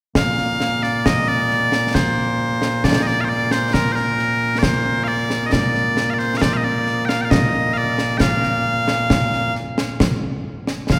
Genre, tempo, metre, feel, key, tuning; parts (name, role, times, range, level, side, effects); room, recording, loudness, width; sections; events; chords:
scottish traditional, Scottish pipe music; 67 BPM; 3/4; straight; Bb major; A4 = 440 Hz
loud bright bagpipes; melody; 0.2-11.0 s; Bb2 to G5; -21 LUFS; equal
concert snare drum and concert bass drum; drums; 0.2-11.0 s; -23 LUFS; equal
wet church reverb, RT60 2.6 s; recorded in a church or concert hall; -19 LUFS; mono
0.1-11.0 A section